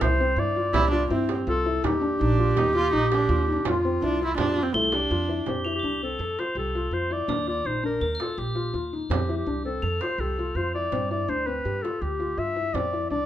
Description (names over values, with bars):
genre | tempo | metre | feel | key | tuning
contemporary instrumental, chamber music in an uneven meter | 165 BPM | 5/4 | straight | F major | A4 = 439 Hz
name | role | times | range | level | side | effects
warm clarinet | melody | 0.0-13.3 s | F4 to E5 | -28 LUFS | equal | none
felt-muted upright piano | arpeggios | 0.0-13.3 s | C4 to Bb4 | -29 LUFS | left 4 dB | none
upright bass | bass | 0.0-13.3 s | Bb1 to G2 | -29 LUFS | right 2 dB | none
frame drum | percussion | 0.0-12.9 s | none | -33 LUFS | right 6 dB | none
dark viola | second line | 0.7-5.5 s | A3 to F4 | -28 LUFS | right 3 dB | none
crotales | texture | 4.7-10.5 s | F7 to C8 | -34 LUFS | left 2 dB | none
room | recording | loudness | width
light reverb | none | -23 LUFS | side -12 dB against mid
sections
0.0-5.5 A section; 5.5-13.3 B section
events
none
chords
0.0 Cadd9; 1.8 Ebmaj7; 3.7 Fsus2; 5.5 F; 7.3 Ebmaj7(no3); 9.1 F; 10.9 G7sus4; 12.7 F5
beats
| 0.02 0.38 0.75 1.11 1.47 | 1.84 2.20 2.56 2.93 3.29 | 3.65 4.02 4.38 4.74 5.11 | 5.47 5.83 6.20 6.56 6.92 | 7.29 7.65 8.02 8.38 8.74 | 9.11 9.47 9.83 10.20 10.56 | 10.93 11.29 11.65 12.02 12.38 | 12.75 13.11